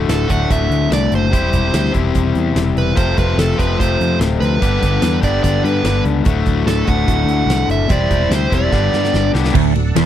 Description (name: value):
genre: classic rock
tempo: 146 BPM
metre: 4/4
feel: straight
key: unclear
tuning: A4 = 439 Hz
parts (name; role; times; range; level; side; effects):
- crunchy overdriven guitar; riff; 0.0-10.1 s; D2 to C5; -18 LUFS; left 8 dB; none
- picked electric bass; bass; 0.0-10.1 s; D1 to G2; -18 LUFS; right 1 dB; none
- dark smooth lead guitar; melody; 0.1-9.3 s; A4 to F#5; -20 LUFS; right 6 dB; overdrive, slapback echo
- huge arena drum kit; drums; 0.1-10.1 s; crash cymbal, hi-hat, kick drum, ride cymbal, snare drum; -19 LUFS; right 1 dB; none
- overdriven tonewheel organ; sustained chords; 9.5-10.1 s; D4 to F#5; -28 LUFS; right 4 dB; slow rotary speaker, chorus vibrato
- crunchy overdriven guitar; riff; 9.5-10.1 s; D2 to E2; -16 LUFS; right 18 dB; none
room: little or no reverb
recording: dry, close 1970s-style studio recording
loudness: -13 LUFS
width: side -11 dB against mid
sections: 0.0-9.5 A section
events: drum fill 8.7-9.5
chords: 0.0 D; 1.3 C/E; 3.0 F; 4.6 G; 6.3 D; 7.9 C/E; 8.7 G; 9.5 D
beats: 0.09 0.50 0.91 | 1.32 1.74 2.15 2.56 | 2.97 3.38 3.79 4.20 | 4.62 5.03 5.44 5.85 | 6.26 6.67 7.08 7.49 | 7.90 8.31 8.72 9.13 | 9.54 9.95